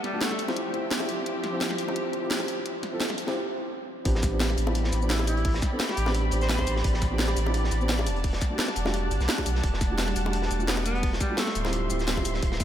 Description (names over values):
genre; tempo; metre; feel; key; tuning
liquid drum and bass; 172 BPM; 4/4; swing 54% on 16ths; A minor; A4 = 440 Hz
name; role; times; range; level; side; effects
clear alto saxophone; melody; 0.0-0.4, 5.1-6.8, 10.7-11.6 s; G3 to C5; -34 LUFS; equal; analog delay
felt-muted upright piano; accompaniment; 0.0-12.6 s; A3 to A4; -32 LUFS; right 1 dB; analog delay
muted studio string section; sustained chords; 0.0-12.6 s; F3 to C6; -34 LUFS; equal; none
garage drum kit; drums; 0.0-12.6 s; hi-hat, shaker, snare drum; -31 LUFS; equal; studio ambience
bongos; percussion; 0.3-12.2 s; none; -39 LUFS; left 1 dB; none
warm sub bass; bass; 4.1-12.6 s; D1 to B1; -27 LUFS; equal; none
crunchy breakbeat drum kit; drums; 4.1-12.6 s; hi-hat, snare drum; -36 LUFS; equal; high-pass filter on hats, studio ambience, high-pass filter on snare, high-pass filter on room
electronic kick drum; drums; 4.1-12.6 s; none; -28 LUFS; equal; studio ambience
room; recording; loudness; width
moderate church reverb, RT60 3.8 s; dreamy mix soaked in reverb; -24 LUFS; side -10 dB against mid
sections
0.0-4.1 A section; 4.1-12.6 B section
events
build-up 0.0-4.1; filter sweep on felt piano 0.0-4.1; break 3.4-4.1; drop 4.1-12.6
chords
0.4 Dm11; 4.1 Am11; 8.1 Em11; 11.6 Dm11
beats
0.22 0.57 0.92 | 1.26 1.61 1.96 2.31 | 2.66 3.01 3.36 3.71 | 4.05 4.40 4.75 5.10 | 5.45 5.80 6.15 6.50 | 6.84 7.19 7.54 7.89 | 8.24 8.59 8.94 9.29 | 9.64 9.98 10.33 10.68 | 11.03 11.38 11.73 12.08 | 12.43